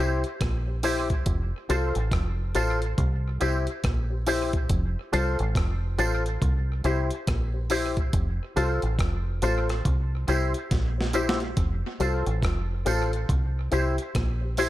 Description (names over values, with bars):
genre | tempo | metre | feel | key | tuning
roots reggae | 70 BPM | 4/4 | swing 61% on 16ths | F major | A4 = 440 Hz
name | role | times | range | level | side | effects
electric guitar with an envelope filter | accompaniment | 0.0-14.7 s | E4 to C5 | -32 LUFS | right 3 dB | ensemble chorus, tape echo
dark upright piano | stabs | 0.0-14.7 s | E4 to C5 | -30 LUFS | left 4 dB | none
deep dub fingered electric bass | bass | 0.0-14.7 s | F1 to C2 | -26 LUFS | equal | none
breakbeat sampler-style drum kit | drums | 0.2-14.7 s | hi-hat, kick drum, rim click, snare drum | -28 LUFS | equal | tape echo
tambourine | percussion | 0.8-14.7 s | none | -42 LUFS | right 5 dB | none
room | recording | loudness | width
light reverb | echo-heavy mix | -24 LUFS | side -15 dB against mid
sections
0.0-14.7 A section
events
drum fill 10.7-11.6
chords
0.0 C; 1.3 F; 3.0 C; 4.7 F; 6.4 C; 8.1 F; 9.9 C; 11.6 F; 13.3 C